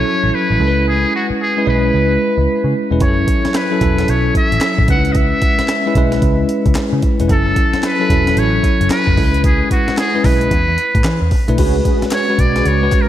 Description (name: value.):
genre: R&B, new jack swing.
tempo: 112 BPM.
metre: 4/4.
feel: swing 63% on 16ths.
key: unclear.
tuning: A4 = 440 Hz.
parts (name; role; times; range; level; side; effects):
trumpet with metal mute; melody; 0.0-13.1 s; F#4 to F#5; -18 LUFS; equal; diffuse ambient delay.
bell-like tine electric piano; accompaniment; 0.0-13.1 s; F#3 to B4; -17 LUFS; equal; medium stereo tremolo.
vintage muted picked electric bass; bass; 0.2-12.9 s; E1 to E3; -17 LUFS; equal; none.
breakbeat sampler-style drum kit; drums; 3.0-13.1 s; crash cymbal, handclaps, hi-hat, kick drum, snare drum; -17 LUFS; equal; none.
mellow synth brass; stabs; 11.6-12.7 s; C#4 to B4; -23 LUFS; equal; chorus, diffuse ambient delay.
group handclap; percussion; 12.1-13.1 s; none; -34 LUFS; left 6 dB; none.
room: wet lush hall reverb, RT60 1.7 s.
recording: dreamy mix soaked in reverb.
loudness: -12 LUFS.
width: side -12 dB against mid.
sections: 0.0-11.6 A section; 11.6-13.1 B section.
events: none.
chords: 0.0 F#m7; 0.6 C#m7; 3.0 F#m7; 4.9 C#m7; 7.3 F#m7; 9.2 C#m7; 10.5 Esus4; 11.6 C#7sus4.